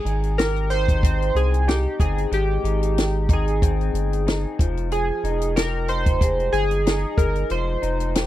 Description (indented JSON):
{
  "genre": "indie pop, bedroom pop",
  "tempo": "93 BPM",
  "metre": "4/4",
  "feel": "swing 55% on 16ths",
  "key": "Ab major",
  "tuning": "A4 = 437 Hz",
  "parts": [
    { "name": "chorused retro synth keys", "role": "melody", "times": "0.0-8.1 s", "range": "G4 to C5", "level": "-24 LUFS", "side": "right 1 dB", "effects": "analog chorus, slapback echo" },
    { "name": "electric guitar through a small old amp", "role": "accompaniment", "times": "0.0-8.3 s", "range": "F3 to G4", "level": "-30 LUFS", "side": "left 5 dB", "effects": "lush chorus, vibrato effect" },
    { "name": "round analog bass", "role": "bass", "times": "0.1-8.3 s", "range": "F1 to C2", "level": "-23 LUFS", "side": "equal", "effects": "none" },
    { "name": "compact cocktail drum kit", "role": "drums", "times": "0.1-8.3 s", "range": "hi-hat, kick drum, snare drum", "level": "-21 LUFS", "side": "equal", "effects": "none" }
  ],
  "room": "little or no reverb",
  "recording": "dry, close 1970s-style studio recording",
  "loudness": "-19 LUFS",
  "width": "side -14 dB against mid",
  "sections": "0.0-8.3 A section",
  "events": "none",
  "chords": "0.0 Abmaj7; 4.6 Fm9"
}